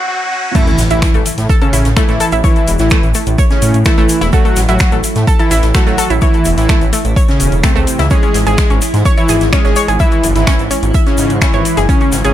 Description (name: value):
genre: melodic techno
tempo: 127 BPM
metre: 4/4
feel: straight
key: unclear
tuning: A4 = 440 Hz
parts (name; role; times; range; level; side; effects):
- fat analog lead; melody; 0.0-12.3 s; B#3 to G#4; -19 LUFS; equal; chorus, cassette tape, sidechain pumping, ping-pong delay
- riser and impact; sound effects; 0.0-2.4 s; none; -22 LUFS; right 1 dB; none
- unplugged drum kit; drums; 0.5-12.3 s; hi-hat, snare drum; -30 LUFS; right 1 dB; none
- soft supersaw; second line; 0.6-12.3 s; B#2 to G#3; -21 LUFS; equal; sidechain pumping, ping-pong delay
- evolving wavetable pad; sustained chords; 0.6-12.3 s; E3 to E4; -23 LUFS; right 1 dB; phaser, built-in reverb, vintage 12-bit sampler grit, sidechain pumping
- analog pluck; arpeggios; 0.6-12.3 s; A3 to E5; -19 LUFS; equal; chorus, sidechain pumping, ping-pong delay
- deep house drum kit; drums; 0.6-12.3 s; crash cymbal, finger snaps, hi-hat; -21 LUFS; equal; overdrive, sidechain pumping on hats, high-pass filter on hats, sidechain pumping on toms, high-pass filter on toms, sidechain pumping on cymbals, high-pass filter on cymbals, high-pass filter on snare
- electronic kick drum; drums; 0.6-12.0 s; none; -13 LUFS; equal; overdrive
- tube shaker; percussion; 0.6-12.3 s; none; -26 LUFS; left 3 dB; none
- dark detuned saw bass; bass; 0.8-12.3 s; E1 to A2; -15 LUFS; equal; sidechain pumping
room: digital ambience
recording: high-pass filter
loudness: -9 LUFS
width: side -12 dB against mid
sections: 0.6-12.3 A section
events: break 0.0-0.6; riser 0.0-0.6; drop 0.6-12.3; impact 0.6-2.4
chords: 0.0 N.C.; 0.6 A; 8.1 C#m